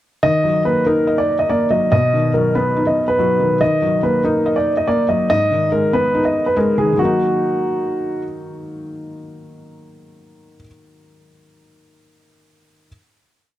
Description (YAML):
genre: hip hop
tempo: 142 BPM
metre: 4/4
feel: half-time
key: Eb harmonic minor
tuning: A4 = 440 Hz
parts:
  - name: dark baby grand piano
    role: melody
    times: 0.2-8.2 s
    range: Gb4 to Eb5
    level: -17 LUFS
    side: right 1 dB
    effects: slapback echo
  - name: felt-muted upright piano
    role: accompaniment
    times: 0.2-12.9 s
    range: Ab2 to Eb5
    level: -19 LUFS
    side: left 2 dB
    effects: none
room: moderate plate reverb, RT60 2.9 s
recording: dark, warm production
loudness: -14 LUFS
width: side -13 dB against mid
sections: 0.2-7.0 breakdown; 7.0-10.4 final chord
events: none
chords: 0.2 Ebm; 1.9 B; 3.6 Ebm; 5.3 Abm; 7.0 Ebm